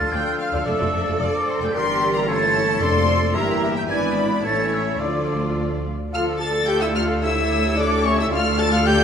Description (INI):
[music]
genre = quick classical-period movement for symphony orchestra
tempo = 110 BPM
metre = 2/4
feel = rubato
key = D minor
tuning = A4 = 440 Hz
[part]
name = warm studio violin section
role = melody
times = 0.0-9.0 s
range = A4 to A6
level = -27 LUFS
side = left 5 dB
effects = none
[part]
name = mellow clarinet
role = second line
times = 0.0-9.0 s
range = C#4 to Bb4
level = -30 LUFS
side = equal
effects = none
[part]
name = rich chamber violin section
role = second line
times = 0.0-9.0 s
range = G4 to C6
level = -30 LUFS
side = left 5 dB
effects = none
[part]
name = small flute group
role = second line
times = 0.0-9.0 s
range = C#5 to A6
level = -27 LUFS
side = equal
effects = none
[part]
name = warm oboe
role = second line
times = 0.0-9.0 s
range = A4 to F5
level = -29 LUFS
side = equal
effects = none
[part]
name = warm studio viola section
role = accompaniment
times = 0.0-9.0 s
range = F3 to A4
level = -27 LUFS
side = right 1 dB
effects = none
[part]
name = mellow French horn section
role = sustained chords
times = 0.0-9.0 s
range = E3 to A4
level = -28 LUFS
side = left 4 dB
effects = none
[part]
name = clear trumpet section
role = stabs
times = 0.0-9.0 s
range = A4 to A5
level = -27 LUFS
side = right 2 dB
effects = none
[part]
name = rich chamber double bass section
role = bass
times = 0.0-9.0 s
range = F1 to D2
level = -26 LUFS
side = right 1 dB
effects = none
[part]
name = warm studio cello section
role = bass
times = 0.0-9.0 s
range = D2 to A4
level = -29 LUFS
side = right 2 dB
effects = none
[sound]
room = wet scoring stage reverb, RT60 1.9 s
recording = small room ambience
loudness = -18 LUFS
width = side -7 dB against mid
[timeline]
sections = 0.0-6.1 A section; 6.1-9.0 B section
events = none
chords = 0.0 Dm; 0.7 Dm/F; 1.7 Em7b5/G; 2.3 A7/G; 2.8 Dm/F; 3.4 Edim/G; 3.9 E7/G#; 4.4 A; 5.0 Dm; 7.2 A7/D; 8.3 Dm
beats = 0.11 | 0.66 1.20 | 1.74 2.27 | 2.82 3.36 | 3.90 4.45 | 5.00 5.57 | 6.13 6.68 | 7.23 7.77 | 8.31 8.86